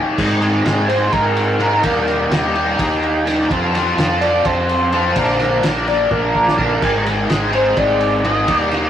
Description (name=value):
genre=psychedelic rock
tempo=253 BPM (eighths)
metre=7/8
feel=straight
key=unclear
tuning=A4 = 440 Hz
part: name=combo organ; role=sustained chords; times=0.0-8.9 s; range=Db4 to Bb5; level=-30 LUFS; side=right 2 dB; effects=none
part: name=overdriven semi-hollow guitar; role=riff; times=0.0-8.9 s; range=Ab2 to Bb4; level=-18 LUFS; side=equal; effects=rotary speaker
part: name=fuzz fingered electric bass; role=bass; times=0.2-8.9 s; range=Ab1 to Ab2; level=-23 LUFS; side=equal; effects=overdrive
part: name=cloth-damped thuddy drum kit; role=drums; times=0.2-8.8 s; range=crash cymbal, kick drum, ride cymbal, snare drum, toms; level=-22 LUFS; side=right 1 dB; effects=none
part: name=overdriven synth lead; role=melody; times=0.9-8.7 s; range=Bb4 to Eb5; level=-18 LUFS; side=equal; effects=distortion, chorus
room=moderate studio reverb, RT60 0.5 s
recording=rough rehearsal-room recording, tube saturation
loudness=-14 LUFS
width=side -10 dB against mid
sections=0.2-8.9 A section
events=break 0.0; drum fill 0.0, 6.1-6.8; analog synth lead solo 0.2-8.9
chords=0.2 Abadd9; 1.8 Eb; 3.5 F; 5.2 Bb; 6.8 Abadd9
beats=| 0.18 0.42 0.66 0.89 1.13 1.37 1.60 | 1.84 2.08 2.31 2.55 2.79 3.02 3.26 | 3.50 3.74 3.97 4.21 4.45 4.68 4.92 | 5.16 5.40 5.63 5.87 6.11 6.35 6.58 | 6.82 7.06 7.29 7.53 7.77 8.01 8.24 | 8.48 8.72